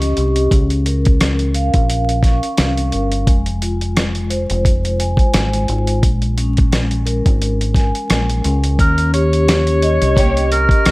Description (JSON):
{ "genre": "hip hop, boom-bap hip-hop", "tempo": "87 BPM", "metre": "4/4", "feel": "swing 55% on 16ths", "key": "unclear", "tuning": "A4 = 439 Hz", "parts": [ { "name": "vibraphone with soft mallets", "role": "accompaniment", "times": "0.0-10.9 s", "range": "Ab3 to Db6", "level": "-20 LUFS", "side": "left 1 dB", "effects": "high-pass filter, low-pass filter" }, { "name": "deep dub fingered electric bass", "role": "bass", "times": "0.0-10.9 s", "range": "F1 to Eb2", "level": "-18 LUFS", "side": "equal", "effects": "none" }, { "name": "dusty soul sampler-style drum kit", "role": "drums", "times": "0.0-10.9 s", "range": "hi-hat, kick drum, rim click, snare drum", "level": "-16 LUFS", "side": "equal", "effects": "none" }, { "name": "breathy tenor saxophone", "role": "melody", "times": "8.8-10.9 s", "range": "Bb4 to Db5", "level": "-18 LUFS", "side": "equal", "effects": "high-pass filter, low-pass filter, slapback echo" }, { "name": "warm studio string section", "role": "stabs", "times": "10.2-10.5 s", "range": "Bb3 to Db5", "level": "-21 LUFS", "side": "right 1 dB", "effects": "high-pass filter, low-pass filter, slapback echo" } ], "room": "light reverb, small room ambience", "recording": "vinyl crackle", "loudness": "-13 LUFS", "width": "side -21 dB against mid", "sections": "0.0-8.8 A section; 8.8-10.9 B section", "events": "none", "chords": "0.0 Eb7; 0.5 Db6; 3.3 Fm; 6.0 Bbm7; 8.8 Eb7", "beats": "| 0.52 1.21 1.90 2.58 | 3.27 3.96 4.65 5.34 | 6.03 6.72 7.41 8.10 | 8.79 9.48 10.17 10.86" }